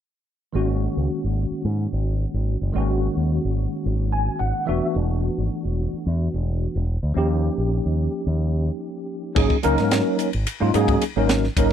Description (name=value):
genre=electric jazz fusion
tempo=109 BPM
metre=4/4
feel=straight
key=G# minor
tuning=A4 = 441 Hz
part: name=tine electric piano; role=accompaniment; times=0.5-11.7 s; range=D#3 to G#5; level=-24 LUFS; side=equal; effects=fast stereo tremolo, ensemble chorus
part: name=fingered electric bass with an envelope filter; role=bass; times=0.5-11.7 s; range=E1 to G#2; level=-22 LUFS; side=equal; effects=none
part: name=crisp fusion drum kit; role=drums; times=9.4-11.7 s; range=crash cymbal, hi-hat, kick drum, ride cymbal, snare drum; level=-24 LUFS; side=equal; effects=none
room=little or no reverb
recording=dry, close 1970s-style studio recording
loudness=-20 LUFS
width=side -9 dB against mid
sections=0.5-9.4 A section; 9.4-11.7 B section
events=tine electric piano fill 3.9-5.0; break 8.8-9.4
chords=0.5 G#9sus4; 4.7 E9sus4; 7.2 D#7; 9.4 G#9sus4